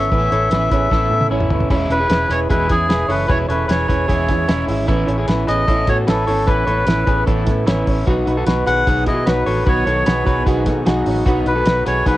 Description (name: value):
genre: jangly indie pop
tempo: 151 BPM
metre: 4/4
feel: straight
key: E major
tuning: A4 = 440 Hz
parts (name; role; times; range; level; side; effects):
- melodica; melody; 0.0-12.2 s; G#4 to F#5; -19 LUFS; left 1 dB; cassette tape
- clear upright piano; accompaniment; 0.0-12.2 s; C#4 to E5; -26 LUFS; right 3 dB; cassette tape
- fingerpicked plugged-in steel-string acoustic guitar; accompaniment; 0.0-12.2 s; E2 to F#4; -24 LUFS; right 6 dB; cassette tape
- electric guitar at the edge of break-up; arpeggios; 0.0-12.2 s; C#4 to C#5; -22 LUFS; left 3 dB; cassette tape
- vintage muted fingered electric bass; bass; 0.0-12.2 s; E1 to B2; -22 LUFS; equal; none
- cloth-damped thuddy drum kit; drums; 0.1-12.2 s; crash cymbal, hi-hat, kick drum, snare drum, toms; -20 LUFS; equal; cassette tape
- warm analog pad; sustained chords; 8.1-12.2 s; D#3 to B3; -29 LUFS; equal; none
room: moderate booth ambience, RT60 0.2 s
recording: home recording on cassette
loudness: -14 LUFS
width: side -16 dB against mid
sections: 0.0-1.7 A section; 1.7-12.2 B section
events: drum fill 0.9-1.7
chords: 0.0 Aadd9; 1.7 E6; 4.9 Aadd9; 8.1 B